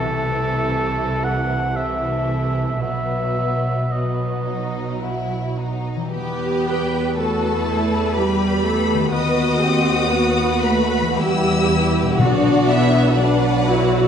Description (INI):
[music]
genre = classical, slow romantic movement for symphony orchestra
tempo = 52-63 BPM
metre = 3/4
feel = rubato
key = E minor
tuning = A4 = 437 Hz
[part]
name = rich studio violin section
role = melody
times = 0.0-14.1 s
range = B3 to E6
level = -26 LUFS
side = left 4 dB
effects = none
[part]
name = clear studio violin section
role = second line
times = 0.0-14.1 s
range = A3 to D#5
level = -26 LUFS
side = left 4 dB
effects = none
[part]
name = warm oboe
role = second line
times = 0.0-5.0 s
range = A4 to F#5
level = -24 LUFS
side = right 2 dB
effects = none
[part]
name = rich studio viola section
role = accompaniment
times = 0.0-14.1 s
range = E3 to G4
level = -23 LUFS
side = right 1 dB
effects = none
[part]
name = concert harp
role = arpeggios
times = 0.0-14.1 s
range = B2 to F#5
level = -26 LUFS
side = left 6 dB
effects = none
[part]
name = clear studio cello section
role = bass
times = 0.0-14.1 s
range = B2 to B4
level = -25 LUFS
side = right 3 dB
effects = none
[part]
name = clear studio double bass section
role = bass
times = 0.0-14.1 s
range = B1 to E2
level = -24 LUFS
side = right 3 dB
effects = none
[part]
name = timpani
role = percussion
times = 12.2-13.6 s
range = B2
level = -23 LUFS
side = left 1 dB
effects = none
[sound]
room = wet scoring stage reverb, RT60 1.5 s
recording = nothing above 10.3 kHz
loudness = -17 LUFS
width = side -8 dB against mid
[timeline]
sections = 0.0-6.1 A section; 6.1-14.1 B section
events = none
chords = 0.0 Am/C; 2.8 B; 6.1 Em; 9.1 B7/D#; 11.2 Em; 12.2 Bm